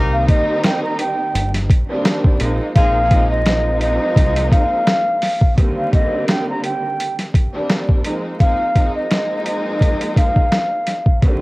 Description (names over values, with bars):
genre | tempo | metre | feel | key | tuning
hip hop, boom-bap hip-hop | 85 BPM | 4/4 | swing 55% on 16ths | unclear | A4 = 435 Hz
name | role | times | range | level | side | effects
warm studio string section | accompaniment | 0.0-11.4 s | D3 to Eb4 | -22 LUFS | equal | high-pass filter, low-pass filter, cassette tape
warm trumpet section | stabs | 0.0-3.0 s | Eb4 to Bb4 | -28 LUFS | equal | high-pass filter, low-pass filter, cassette tape, tape echo
deep dub fingered electric bass | bass | 0.0-4.5 s | G1 to C2 | -19 LUFS | equal | none
mellow silver concert flute | melody | 0.1-11.2 s | Eb5 to Bb5 | -20 LUFS | equal | high-pass filter, low-pass filter, cassette tape
boom bap sampler-style drum kit | drums | 0.3-11.4 s | hi-hat, kick drum, snare drum | -15 LUFS | equal | cassette tape
room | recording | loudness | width
little or no reverb | home recording on cassette, vinyl crackle | -14 LUFS | side -21 dB against mid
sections
0.0-5.6 A section; 5.6-11.4 B section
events
none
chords
0.0 Cm7; 2.4 Bb7sus4; 5.6 Cm7; 8.1 Bb7sus4